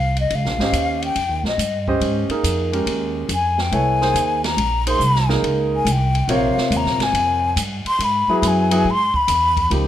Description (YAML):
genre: modal jazz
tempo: 140 BPM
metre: 4/4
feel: swing 67% on 8ths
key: Bb dorian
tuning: A4 = 440 Hz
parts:
  - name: breathy concert flute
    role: melody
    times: 0.0-9.7 s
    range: Eb5 to C6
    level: -20 LUFS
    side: left 2 dB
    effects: plate reverb
  - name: upright bass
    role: bass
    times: 0.0-9.9 s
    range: Ab1 to Ab2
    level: -22 LUFS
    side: equal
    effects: none
  - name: open jazz drum kit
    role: drums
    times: 0.2-9.8 s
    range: hi-hat, kick drum, ride cymbal, snare drum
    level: -27 LUFS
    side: right 1 dB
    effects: none
  - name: warm grand piano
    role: accompaniment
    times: 0.6-9.9 s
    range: C3 to Eb5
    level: -21 LUFS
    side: right 1 dB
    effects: none
room: light reverb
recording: none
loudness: -16 LUFS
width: side -11 dB against mid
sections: 0.0-9.7 A section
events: flute solo 0.0-9.9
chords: 0.0 Bb9sus4; 8.0 Eadd9